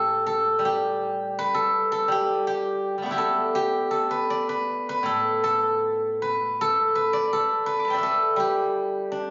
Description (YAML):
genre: chinese traditional, Chinese solo plucked strings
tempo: 81 BPM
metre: 2/4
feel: uneven beats, rubato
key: D zhi mode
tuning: A4 = 441 Hz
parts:
  - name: steel-string zither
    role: solo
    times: 0.0-9.3 s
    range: A2 to D6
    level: -24 LUFS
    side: equal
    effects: none
room: moderate recital hall reverb, RT60 1.4 s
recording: recorded on a phone in the room, club reverb, compression, nothing above 7.4 kHz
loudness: -24 LUFS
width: mono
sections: 0.0-9.3 A section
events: none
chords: none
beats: | 0.61 1.35 | 2.08 2.81 | 3.54 4.29 | 5.06 5.82 | 6.58 7.31 | 8.02 8.74